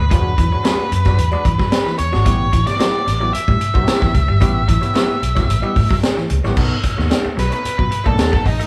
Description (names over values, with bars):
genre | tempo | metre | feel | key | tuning
funk | 112 BPM | 4/4 | straight | unclear | A4 = 440 Hz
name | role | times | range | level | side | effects
octave-fuzz lead guitar | melody | 0.0-8.7 s | D#4 to E5 | -24 LUFS | equal | distortion
archtop guitar, miked and amplified | accompaniment | 0.0-8.6 s | G#3 to D#5 | -28 LUFS | equal | none
semi-hollow electric guitar | riff | 0.0-8.7 s | E3 to B3 | -30 LUFS | equal | none
vintage muted fingered electric bass | bass | 0.0-8.6 s | G1 to E3 | -21 LUFS | equal | none
vintage drum kit | drums | 0.1-8.7 s | crash cymbal, hi-hat, kick drum, snare drum | -20 LUFS | equal | none
room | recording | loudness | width
moderate large studio reverb, RT60 1.1 s | band playing live in one room | -17 LUFS | mono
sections
0.0-6.6 A section; 6.6-8.7 B section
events
lead electric guitar solo 6.6-8.7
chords
0.0 E13; 2.3 A9; 6.6 B9